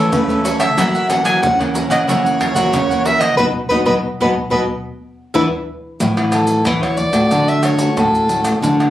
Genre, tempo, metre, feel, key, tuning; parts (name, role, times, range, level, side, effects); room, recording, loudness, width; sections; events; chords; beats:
samba and choro; 92 BPM; 4/4; straight; A4 = 440 Hz
breathy soprano saxophone; melody; 0.0-8.5 s; A4 to G#5; -18 LUFS; equal
cavaquinho; accompaniment; 0.0-5.5 s; E4 to F#5; -21 LUFS; right 2 dB
nylon-string guitar; accompaniment; 0.0-8.9 s; F#2 to A4; -21 LUFS; left 2 dB
nylon-string guitar; bass; 0.0-8.9 s; A2 to F#3; -19 LUFS; right 1 dB
maracas, surdo, pandeiro and tamborim; percussion; 0.1-8.9 s; -22 LUFS; equal
moderate studio ambience, RT60 0.5 s; recorded on a phone in the room, club reverb, compression; -13 LUFS; side -13 dB against mid
0.0-6.0 A section; 6.0-8.9 B section
band accent 3.4-6.0; drum fill 5.0-6.0
0.0 A; 0.8 F#7; 3.4 B; 4.7 E5; 6.0 Asus2; 7.3 Dmaj7
0.13 | 0.78 1.43 2.09 2.74 | 3.39 4.05 4.70 5.35 | 6.01 6.66 7.32 7.97 | 8.62